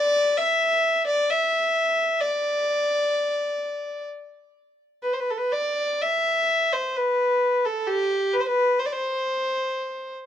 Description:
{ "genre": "celtic folk", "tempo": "61-67 BPM", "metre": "3/4", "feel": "rubato", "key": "E minor", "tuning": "A4 = 440 Hz", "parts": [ { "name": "warm fiddle", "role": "solo", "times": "0.0-10.1 s", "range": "G4 to E5", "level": "-21 LUFS", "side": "left 1 dB", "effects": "none" } ], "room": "small room ambience", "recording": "dry, close 1970s-style studio recording", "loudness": "-21 LUFS", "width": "side -10 dB against mid", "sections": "0.0-5.0 A section; 5.0-10.3 B section", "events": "none", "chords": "none", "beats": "0.37 1.27 | 2.19 3.10 4.04 | 5.01 6.00 6.95 | 7.86 8.78 9.69" }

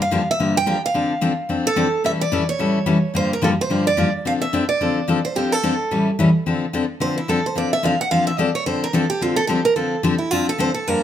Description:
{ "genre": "jazz", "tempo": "217 BPM", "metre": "4/4", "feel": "swing 58% on 8ths", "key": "D minor", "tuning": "A4 = 440 Hz", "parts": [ { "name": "picked steel-string acoustic guitar", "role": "melody", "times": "0.0-11.0 s", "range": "E4 to G5", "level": "-21 LUFS", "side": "right 3 dB", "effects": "none" }, { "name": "picked steel-string acoustic guitar", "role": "accompaniment", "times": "0.0-11.0 s", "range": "G2 to A4", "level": "-20 LUFS", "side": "left 2 dB", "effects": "none" } ], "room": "wet studio reverb, RT60 0.7 s", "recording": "none", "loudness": "-17 LUFS", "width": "side -10 dB against mid", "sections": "0.0-6.5 A section; 6.5-11.0 B section", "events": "steel-string acoustic guitar solo 6.5-11.0", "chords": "0.0 Gm7; 0.9 Dm7; 2.0 A7; 3.1 Gm7; 4.2 Dm7; 5.9 A7; 6.5 Dm7", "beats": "0.10 0.38 0.65 | 0.93 1.21 1.48 1.76 | 2.04 2.31 2.59 2.86 | 3.14 3.42 3.69 3.97 | 4.25 4.52 4.80 5.07 | 5.35 5.63 5.90 6.18 | 6.45 6.73 7.01 7.28 | 7.56 7.83 8.11 8.38 | 8.66 8.93 9.21 9.48 | 9.76 10.04 10.31 10.59 | 10.86" }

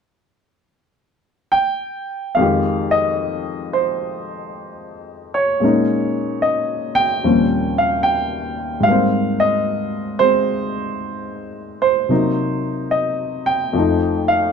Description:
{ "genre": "solo jazz", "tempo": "74 BPM", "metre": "4/4", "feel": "swing 67% on 8ths, rubato", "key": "F minor", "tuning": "A4 = 440 Hz", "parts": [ { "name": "dark baby grand piano", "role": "solo", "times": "1.5-14.5 s", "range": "Eb2 to G5", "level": "-17 LUFS", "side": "equal", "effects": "none" } ], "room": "light reverb", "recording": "close, detailed microphones", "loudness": "-16 LUFS", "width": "side -6 dB against mid", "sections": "0.0-2.4 A section; 2.4-14.5 B section", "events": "none", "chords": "0.0 N.C.; 2.4 Fm9; 5.6 Bbm7; 7.2 Eb13; 8.8 Abmaj9; 12.1 Cm7b5; 13.7 F7", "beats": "0.73 1.55 | 2.38 3.21 4.02 4.83 | 5.63 6.43 7.23 8.04 | 8.85 9.66 10.47 11.29 | 12.10 12.92 13.74" }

